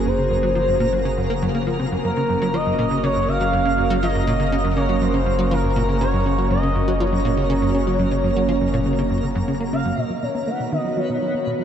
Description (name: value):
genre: ambient, sequencer-driven space music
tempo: 121 BPM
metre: 4/4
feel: straight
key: unclear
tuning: A4 = 440 Hz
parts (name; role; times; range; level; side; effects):
- expressive portamento lead; melody; 0.0-11.6 s; Bb4 to F#5; -24 LUFS; equal; lush chorus, vintage 12-bit sampler grit, ping-pong delay
- phased analog pad; sustained chords; 0.0-11.6 s; Db3 to B4; -24 LUFS; right 2 dB; phaser, chorus
- plucky analog bass; riff; 0.0-11.6 s; Gb2 to B3; -24 LUFS; equal; lush chorus, ping-pong delay
- warm sub bass; bass; 0.0-10.0 s; Gb1; -25 LUFS; equal; none
- twinkling granular texture; texture; 0.0-11.6 s; B3 to Bb4; -31 LUFS; equal; built-in reverb
room: wet huge ambient reverb, RT60 7.4 s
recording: dark, warm production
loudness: -18 LUFS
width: side -9 dB against mid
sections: 0.0-10.0 A section; 10.0-11.6 B section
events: filter sweep on analog synth bass 10.0-11.6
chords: 0.0 Gbadd9; 10.0 B